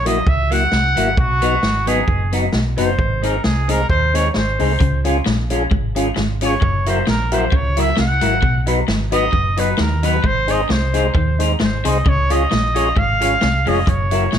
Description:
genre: ska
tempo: 132 BPM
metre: 4/4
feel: swing 54% on 8ths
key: Db major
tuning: A4 = 440 Hz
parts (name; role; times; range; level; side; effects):
- warm trumpet; melody; 0.0-14.4 s; Gb4 to Gb5; -20 LUFS; right 1 dB; none
- hollow-body short-scale fingered electric bass; bass; 0.0-14.4 s; F1 to Eb2; -20 LUFS; equal; none
- semi-hollow electric guitar; accompaniment; 0.1-14.3 s; Gb3 to F4; -24 LUFS; right 1 dB; wide subtle chorus
- tonewheel organ; stabs; 0.1-14.3 s; Bb3 to Db5; -24 LUFS; left 4 dB; overdrive, slow rotary speaker
- swinging big-band drum kit; drums; 0.1-14.4 s; hi-hat, kick drum, snare drum; -21 LUFS; equal; none
- electric guitar at the edge of break-up; riff; 4.8-14.4 s; F2 to Eb3; -26 LUFS; left 7 dB; none
room: light reverb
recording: none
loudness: -15 LUFS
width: side -9 dB against mid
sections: 0.0-14.4 A section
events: trumpet solo 0.0-14.4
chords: 0.0 Gb7; 1.2 Cb; 3.0 Ab; 4.8 Db; 6.6 Gb7; 8.4 Cb; 10.2 Ab; 12.1 Db; 13.9 Gb7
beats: 0.27 0.72 | 1.17 1.63 2.08 2.53 | 2.99 3.44 3.90 4.35 | 4.80 5.26 5.71 6.16 | 6.62 7.07 7.53 7.98 | 8.43 8.89 9.34 9.79 | 10.25 10.70 11.15 11.61 | 12.06 12.52 12.97 13.42 | 13.88 14.33

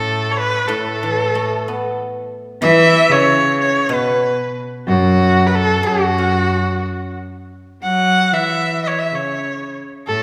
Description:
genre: chinese traditional, Chinese chamber ensemble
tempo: 93 BPM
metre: 4/4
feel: rubato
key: A gong mode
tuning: A4 = 440 Hz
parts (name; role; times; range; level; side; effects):
- clear erhu; melody; 0.0-10.2 s; F#4 to F#5; -19 LUFS; equal; none
- rich cello; second line; 0.0-10.2 s; F#2 to F#3; -21 LUFS; equal; none
- guzheng; accompaniment; 0.0-7.8 s; A2 to C#4; -24 LUFS; equal; none
room: wet scoring stage reverb, RT60 1.6 s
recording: recorded in a church or concert hall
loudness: -16 LUFS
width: mono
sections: 0.0-10.2 A section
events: none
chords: none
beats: | 0.06 0.71 1.35 2.00 | 2.63 3.27 3.91 4.56 | 5.20 5.85 6.50 7.16 | 7.82 8.48 9.12 9.76

